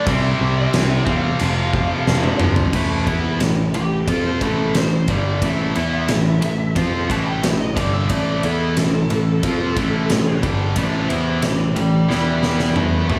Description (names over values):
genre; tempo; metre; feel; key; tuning
hard rock; 90 BPM; 4/4; straight; A minor; A4 = 437 Hz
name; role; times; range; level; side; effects
bluesy overdriven lead guitar; melody; 0.0-13.2 s; G4 to A5; -29 LUFS; equal; distortion, tape echo
high-gain distorted guitar; riff; 0.0-13.2 s; F2 to F4; -24 LUFS; equal; distortion
modern bright picked electric bass; bass; 0.1-13.2 s; F1 to F2; -23 LUFS; equal; none
huge arena drum kit; drums; 0.1-13.2 s; crash cymbal, kick drum, ride cymbal, snare drum, toms; -25 LUFS; equal; none
room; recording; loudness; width
small room reverb; studio ambience; -19 LUFS; mono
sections
0.0-2.7 A section; 2.7-13.2 B section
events
drum fill 2.1-2.7, 12.1-13.2; lead electric guitar solo 2.7-13.2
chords
0.1 C; 1.4 F5; 2.7 A5; 12.1 E5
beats
| 0.07 0.74 1.41 2.08 | 2.75 3.42 4.08 4.75 | 5.42 6.09 6.76 7.43 | 8.10 8.77 9.44 10.10 | 10.77 11.44 12.10 12.77